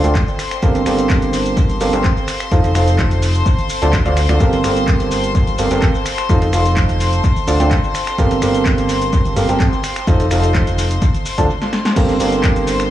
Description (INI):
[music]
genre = piano house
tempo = 127 BPM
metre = 4/4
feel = straight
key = G minor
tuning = A4 = 441 Hz
[part]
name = rich studio string section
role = sustained chords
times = 0.0-12.9 s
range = C5 to C6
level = -24 LUFS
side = left 4 dB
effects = sidechain pumping
[part]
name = clear upright piano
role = riff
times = 0.0-12.9 s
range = C4 to A5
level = -19 LUFS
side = right 2 dB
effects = sidechain pumping, low-pass filter, dub echo
[part]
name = plucky analog bass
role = bass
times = 0.0-12.9 s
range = F1 to D2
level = -18 LUFS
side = equal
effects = sidechain pumping
[part]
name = punchy analog drum machine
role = drums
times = 0.0-12.9 s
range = crash cymbal, finger snaps, handclaps, hi-hat, shaker, snare drum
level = -24 LUFS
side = equal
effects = dub echo
[part]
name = deep dark ambient pad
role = texture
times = 0.4-11.5 s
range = C5 to A5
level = -32 LUFS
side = right 2 dB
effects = none
[part]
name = electronic kick drum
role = drums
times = 0.2-12.5 s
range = none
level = -18 LUFS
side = equal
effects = none
[sound]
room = light reverb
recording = echo-heavy mix, small room ambience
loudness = -13 LUFS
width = side -13 dB against mid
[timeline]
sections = 0.0-12.0 A section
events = break 11.5-12.0; drum fill 11.6-12.0; band accent 11.8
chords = 0.0 Dm7; 0.6 Gm11; 2.5 F7; 3.5 Dm7; 4.4 Gm11; 6.3 F7; 7.2 Dm7; 8.2 Gm11; 10.1 F7; 11.0 Dm7; 12.0 Gm11